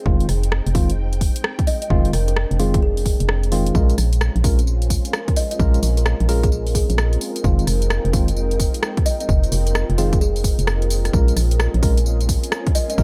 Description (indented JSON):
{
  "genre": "UK garage, two-step garage",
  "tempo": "130 BPM",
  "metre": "4/4",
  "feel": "swing 64% on 16ths",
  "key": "Bb dorian",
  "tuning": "A4 = 440 Hz",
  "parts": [
    { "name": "soft string machine", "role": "sustained chords", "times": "0.0-13.0 s", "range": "Ab3 to G5", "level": "-36 LUFS", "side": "equal", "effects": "ensemble chorus, sidechain pumping" },
    { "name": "deep dark ambient pad", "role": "texture", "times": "1.0-13.0 s", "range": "F4 to Ab5", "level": "-34 LUFS", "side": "equal", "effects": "chorus, built-in reverb, sidechain pumping" },
    { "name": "tine electric piano", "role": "stabs", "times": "0.1-13.0 s", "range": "Eb3 to Bb4", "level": "-27 LUFS", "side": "equal", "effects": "low-pass filter, digital delay" },
    { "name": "organ-like FM bass", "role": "bass", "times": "0.1-13.0 s", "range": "F1 to Bb1", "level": "-21 LUFS", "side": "equal", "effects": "none" },
    { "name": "electronic kick drum", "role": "drums", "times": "0.1-13.0 s", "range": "none", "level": "-21 LUFS", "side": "equal", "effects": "overdrive" },
    { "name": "house drum kit", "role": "drums", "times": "0.2-13.0 s", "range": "hi-hat, rim click, tambourine", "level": "-29 LUFS", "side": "equal", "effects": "overdrive" },
    { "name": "kalimba", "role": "melody", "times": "1.7-13.0 s", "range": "Ab4 to Eb5", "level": "-31 LUFS", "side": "equal", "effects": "none" }
  ],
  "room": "little or no reverb",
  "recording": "none",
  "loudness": "-19 LUFS",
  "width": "mono",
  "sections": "0.0-13.0 A section",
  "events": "filter sweep on tine electric piano 0.0-13.0",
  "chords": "0.0 Fm7; 3.8 Bbm7; 7.2 Fm7; 11.1 Bbm7",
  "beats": "| 0.06 0.52 0.98 1.44 | 1.90 2.37 2.83 3.29 | 3.75 4.21 4.67 5.13 | 5.60 6.06 6.52 6.98 | 7.44 7.90 8.37 8.83 | 9.29 9.75 10.21 10.67 | 11.13 11.60 12.06 12.52 | 12.98"
}